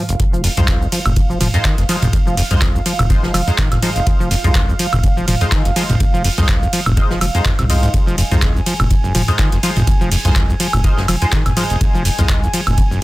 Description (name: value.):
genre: acid house.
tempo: 124 BPM.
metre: 4/4.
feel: swing 55% on 16ths.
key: F minor.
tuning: A4 = 440 Hz.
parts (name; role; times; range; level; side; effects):
warm analog pad; sustained chords; 0.0-13.0 s; F5 to Ab5; -26 LUFS; right 4 dB; chorus, sidechain pumping.
deep acid bass; riff; 0.0-13.0 s; F1 to F3; -18 LUFS; equal; overdrive, sidechain pumping, tape echo.
booming analog drum machine; drums; 0.1-13.0 s; handclaps, hi-hat, ride cymbal, shaker, toms, woodblock; -20 LUFS; equal; none.
saturated sub bass; bass; 0.2-13.0 s; F1 to C2; -20 LUFS; equal; sidechain pumping.
electronic kick drum; drums; 0.2-12.9 s; none; -17 LUFS; equal; none.
open jazz drum kit; drums; 0.2-12.9 s; hi-hat, snare drum; -32 LUFS; right 4 dB; none.
band-passed chord stab; stabs; 0.6-12.4 s; Ab3 to C5; -26 LUFS; left 3 dB; phaser, analog chorus, tape echo.
room: light reverb.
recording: dense, heavily limited modern master.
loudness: -13 LUFS.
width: side -18 dB against mid.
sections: 0.2-13.0 A section.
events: break 0.0; drop 0.2-13.0.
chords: 0.2 Fm7.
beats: | 0.20 0.68 1.16 1.65 | 2.13 2.62 3.10 3.58 | 4.07 4.55 5.04 5.52 | 6.00 6.49 6.97 7.46 | 7.94 8.42 8.91 9.39 | 9.87 10.36 10.84 11.32 | 11.81 12.29 12.78.